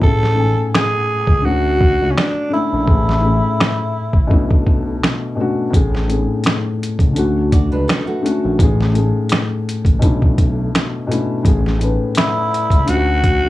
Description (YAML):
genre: lo-fi hip hop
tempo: 84 BPM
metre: 4/4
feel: swing 56% on 16ths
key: A major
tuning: A4 = 440 Hz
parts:
  - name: growling tenor saxophone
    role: melody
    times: 0.0-4.6, 12.2-13.5 s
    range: C#4 to A4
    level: -19 LUFS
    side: equal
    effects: plate reverb
  - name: felt-muted upright piano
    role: accompaniment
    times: 0.0-13.5 s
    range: A2 to G#5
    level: -19 LUFS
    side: left 2 dB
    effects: cassette tape, plate reverb
  - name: smooth synth bass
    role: bass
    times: 0.0-13.5 s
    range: A1 to D2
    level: -19 LUFS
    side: equal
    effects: none
  - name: boom bap sampler-style drum kit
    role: drums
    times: 0.0-13.4 s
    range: finger snaps, hi-hat, kick drum, snare drum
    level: -16 LUFS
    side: equal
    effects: none
  - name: nylon-string guitar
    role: second line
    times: 7.5-8.6 s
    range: A3 to D5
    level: -24 LUFS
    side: right 2 dB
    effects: tape echo, plate reverb
room: light reverb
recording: small room ambience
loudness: -14 LUFS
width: side -16 dB against mid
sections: 0.0-13.5 A section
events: break 0.0-5.7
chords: 0.0 Amaj7; 1.4 Dmaj7; 2.9 Amaj7; 4.3 Bm11; 5.7 Amaj7; 7.2 Dmaj7; 8.6 Amaj7; 10.0 Bm11; 11.4 Amaj7; 12.9 Dmaj7